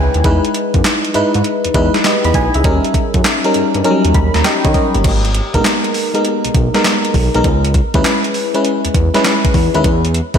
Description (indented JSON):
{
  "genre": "R&B, new jack swing",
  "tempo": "100 BPM",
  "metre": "4/4",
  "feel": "swing 67% on 16ths",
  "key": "G# harmonic minor",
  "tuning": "A4 = 437 Hz",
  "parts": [
    { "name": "FM electric piano", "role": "accompaniment", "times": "0.0-10.4 s", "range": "F#3 to B5", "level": "-15 LUFS", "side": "left 1 dB", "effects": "chorus, slapback echo" },
    { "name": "smooth gliding synth bass", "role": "bass", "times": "0.0-10.4 s", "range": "G1 to D#3", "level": "-16 LUFS", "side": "equal", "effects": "none" },
    { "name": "crisp 8-bit digital drum machine", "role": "drums", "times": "0.1-10.4 s", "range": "crash cymbal, handclaps, hi-hat, kick drum, snare drum", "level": "-16 LUFS", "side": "equal", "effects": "overdrive" }
  ],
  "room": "moderate scoring stage reverb, RT60 2.0 s",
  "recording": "big arena sound",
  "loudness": "-12 LUFS",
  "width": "side -8 dB against mid",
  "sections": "0.0-5.0 A section; 5.0-10.4 B section",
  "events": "FM electric piano fill 0.0, 3.8-5.0",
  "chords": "0.2 Emaj7; 2.6 D#7; 5.0 G#madd9; 7.4 C#m7; 9.8 N.C."
}